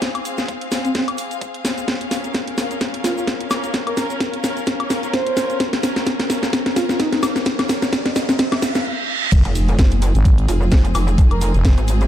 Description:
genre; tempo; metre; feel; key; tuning
bass house; 129 BPM; 4/4; swing 56% on 16ths; F minor; A4 = 440 Hz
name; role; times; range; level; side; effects
electronic kick drum; drums; 0.0-11.8 s; none; -15 LUFS; equal; high-pass filter on kick
house drum kit; drums; 0.0-12.1 s; crash cymbal, hi-hat, ride cymbal, snare drum, woodblock; -21 LUFS; left 1 dB; overdrive
egg shaker; percussion; 0.0-12.1 s; none; -38 LUFS; left 5 dB; none
rich studio string section; texture; 0.0-12.1 s; C4 to F5; -28 LUFS; left 1 dB; sidechain pumping
breathy flute-like synth lead; melody; 0.8-11.5 s; C4 to C5; -26 LUFS; right 1 dB; chorus, ping-pong delay
riser, reverse cymbal and impact; sound effects; 5.1-11.2 s; none; -28 LUFS; right 2 dB; none
growling FM bass; bass; 9.3-11.8 s; F1 to Ab1; -16 LUFS; equal; overdrive, sidechain pumping
dusty soul sampler-style drum kit; drums; 9.3-12.1 s; hi-hat, snare drum; -39 LUFS; left 1 dB; none
pulsing pluck wobble bass; bass; 9.5-12.1 s; F1 to Ab1; -17 LUFS; equal; chorus, overdrive, sidechain pumping
room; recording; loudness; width
light reverb, digital ambience; dark, warm production; -16 LUFS; side -11 dB against mid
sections
0.0-9.3 A section; 9.3-12.1 B section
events
build-up 0.0-9.3; drum fill 0.0-8.9; reverse cymbal 8.4-9.3; drop 9.3-12.1; impact 9.3-11.2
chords
0.0 Fm; 1.9 Bbm; 9.3 Fm

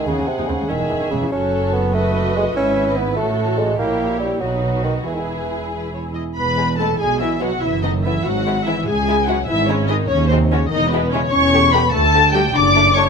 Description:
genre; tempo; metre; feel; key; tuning
quick classical-period movement for symphony orchestra; 97 BPM (dotted quarters); 6/8; rubato; E major; A4 = 440 Hz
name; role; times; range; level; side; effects
muted studio violin section; melody; 0.0-13.1 s; B4 to D6; -20 LUFS; left 3 dB; none
muted studio violin section; second line; 0.0-13.0 s; G#3 to B4; -26 LUFS; left 2 dB; none
mellow bassoon; accompaniment; 0.0-5.7 s; B#2 to C#4; -21 LUFS; right 1 dB; none
muted studio cello section; bass; 0.0-13.1 s; C#2 to B2; -24 LUFS; right 2 dB; none
muted studio viola section; accompaniment; 0.1-13.1 s; E3 to D5; -24 LUFS; right 1 dB; none
muted studio double bass section; bass; 0.1-13.1 s; E1 to D#2; -23 LUFS; right 3 dB; none
mellow French horn section; sustained chords; 6.4-13.1 s; B2 to D4; -24 LUFS; left 5 dB; none
room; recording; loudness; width
moderate scoring stage reverb, RT60 1.5 s; none; -16 LUFS; side -5 dB against mid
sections
0.0-6.4 A section; 6.4-13.1 A section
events
none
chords
0.1 G#7/D#; 0.7 C#m/E; 1.3 F#m; 1.9 B7/F#; 2.6 E/G#; 3.2 F#m/A; 3.8 A#dim7; 4.4 B; 5.1 E; 7.6 B5/F#; 8.3 E/G#; 8.9 C#m; 10.1 G#5/D#; 10.7 C#m9/E; 11.3 A7/E; 11.9 D; 12.6 D/F#

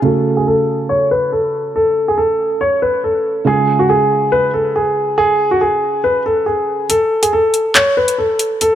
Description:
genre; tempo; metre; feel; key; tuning
hip hop, drill; 140 BPM; 4/4; half-time; F# harmonic minor; A4 = 442 Hz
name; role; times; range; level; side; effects
dark baby grand piano; melody; 0.0-8.8 s; F#4 to C#5; -13 LUFS; equal; low-pass filter, ping-pong delay
felt-muted upright piano; accompaniment; 0.0-6.9 s; C#3 to A4; -21 LUFS; right 4 dB; low-pass filter
drill drum kit; drums; 6.9-8.7 s; handclaps, hi-hat; -14 LUFS; equal; none
room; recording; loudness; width
light reverb, studio ambience; none; -13 LUFS; side -11 dB against mid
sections
0.0-6.9 A section; 6.9-8.8 B section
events
filter sweep 0.0-6.9; kick muted 6.9-8.8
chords
0.0 F#m; 3.5 C#; 6.9 N.C.

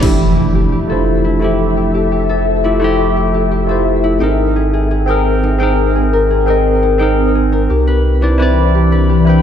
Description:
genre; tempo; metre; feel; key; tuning
drum and bass; 172 BPM; 4/4; straight; unclear; A4 = 435 Hz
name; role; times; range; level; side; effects
barky tine electric piano; accompaniment; 0.0-9.4 s; F3 to G5; -16 LUFS; equal; phaser, low-pass filter, digital delay
ethereal airy pad; sustained chords; 0.0-9.4 s; E3 to B5; -18 LUFS; left 2 dB; ensemble chorus, built-in reverb, vintage 12-bit sampler grit
concert harp; arpeggios; 0.0-9.4 s; D4 to C5; -18 LUFS; left 2 dB; low-pass filter, digital delay
warm sub bass; bass; 0.0-9.4 s; F1 to C2; -16 LUFS; equal; none
impact; sound effects; 0.0-1.4 s; none; -18 LUFS; equal; none
room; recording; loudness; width
moderate lush hall reverb, RT60 1.7 s; dark, warm production; -11 LUFS; side -9 dB against mid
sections
0.0-9.4 A section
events
impact 0.0-1.4; filter sweep on tine electric piano 0.0-9.4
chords
0.0 Fmaj9; 4.2 Abmaj9; 7.7 Cmaj9

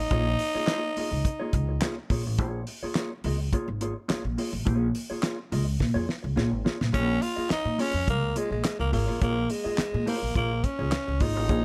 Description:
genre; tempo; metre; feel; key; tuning
funk; 105 BPM; 4/4; straight; Bb minor; A4 = 439 Hz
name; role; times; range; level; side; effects
growling tenor saxophone; melody; 0.0-2.1, 6.9-11.6 s; Ab3 to F4; -32 LUFS; equal; none
upright bass; bass; 0.0-11.6 s; Ab1 to Bb2; -30 LUFS; equal; none
mellow electric guitar; accompaniment; 0.1-11.6 s; Bb3 to Eb5; -36 LUFS; equal; none
damped 70s drum kit; drums; 0.1-11.6 s; handclaps, hi-hat, kick drum, snare drum; -32 LUFS; equal; none
room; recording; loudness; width
studio ambience; none; -27 LUFS; mono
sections
0.0-6.9 A section; 6.9-11.6 B section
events
drum fill 5.8-6.9; tenor saxophone solo 6.9-11.6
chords
0.0 Bbm7

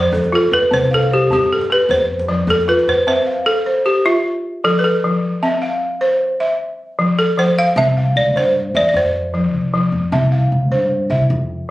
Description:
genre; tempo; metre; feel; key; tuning
west african traditional, West African string and xylophone music; 102 BPM (dotted quarters); 12/8; straight; C major; A4 = 440 Hz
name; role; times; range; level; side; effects
balafon; melody; 0.0-9.7 s; F4 to F5; -15 LUFS; equal; none
balafon; arpeggios; 0.0-11.3 s; F3 to F5; -18 LUFS; equal; none
upright bass; bass; 0.0-3.0, 7.8-11.7 s; C2 to G2; -20 LUFS; equal; none
djembe; percussion; 0.1-3.0 s; none; -31 LUFS; right 1 dB; none
room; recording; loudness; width
light reverb; recorded on a phone in the room, club reverb; -14 LUFS; side -16 dB against mid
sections
0.0-3.1 A section; 3.1-11.7 B section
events
none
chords
0.0 F; 0.7 C5; 1.9 F; 3.1 C; 4.2 N.C.; 5.4 C; 6.6 N.C.; 7.8 C; 9.0 F5; 10.1 C

